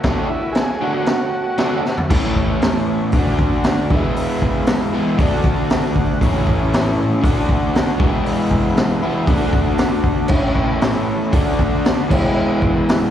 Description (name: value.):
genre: garage rock duo or trio.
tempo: 117 BPM.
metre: 4/4.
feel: straight.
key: unclear.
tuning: A4 = 440 Hz.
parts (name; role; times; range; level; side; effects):
overdriven combo organ; sustained chords; 0.0-13.1 s; A3 to A5; -30 LUFS; right 1 dB; none.
crunchy overdriven guitar; riff; 0.0-13.1 s; A2 to A4; -18 LUFS; equal; slapback echo.
raw garage drum kit; drums; 0.0-13.0 s; crash cymbal, hi-hat, kick drum, snare drum, toms; -18 LUFS; equal; none.
overdriven combo organ; melody; 0.3-1.8 s; E4 to G#4; -22 LUFS; right 2 dB; slapback echo.
room: light reverb.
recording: live gig heard through the venue's PA, recital hall reverb.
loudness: -15 LUFS.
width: side -10 dB against mid.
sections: 0.0-2.1 A section; 2.1-13.1 B section.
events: drum fill 1.9; transistor combo organ fill 5.2-6.2.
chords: 0.0 D; 2.1 A; 3.1 D; 3.9 E; 5.2 D; 6.2 A; 7.2 D; 8.0 E; 9.3 D; 10.3 A; 11.3 D; 12.1 E.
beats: | 0.06 0.57 1.09 1.60 | 2.12 2.63 3.14 3.65 | 4.17 4.68 5.19 5.70 | 6.21 6.73 7.24 7.75 | 8.26 8.77 9.29 9.80 | 10.31 10.82 11.34 11.85 | 12.36 12.87.